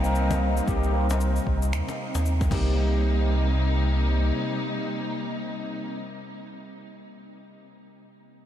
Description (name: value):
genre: organic downtempo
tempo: 114 BPM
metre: 4/4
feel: swing 59% on 16ths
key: C minor pentatonic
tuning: A4 = 445 Hz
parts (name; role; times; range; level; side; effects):
- overdriven tine electric piano; accompaniment; 0.0-6.0 s; Bb3 to C5; -32 LUFS; left 1 dB; phaser, sidechain pumping, ping-pong delay
- rich studio string section; sustained chords; 0.0-6.0 s; C3 to Eb4; -30 LUFS; equal; sidechain pumping, low-pass filter
- warm sub bass; bass; 0.0-4.3 s; C2 to Eb2; -24 LUFS; equal; none
- deep house drum kit; drums; 0.0-2.6 s; cabasa, crash cymbal, finger snaps; -40 LUFS; left 2 dB; overdrive
- cajon; percussion; 0.3-2.6 s; none; -38 LUFS; left 3 dB; none
- electronic kick drum; drums; 0.7-2.6 s; none; -28 LUFS; equal; overdrive
room: moderate huge ambient reverb, RT60 7.7 s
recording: dreamy mix soaked in reverb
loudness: -23 LUFS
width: side -11 dB against mid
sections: 0.0-2.8 A section; 2.8-7.0 B section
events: filter sweep on sub bass 0.0-2.8; filter sweep on string section 0.0-2.8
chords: 0.0 Cm7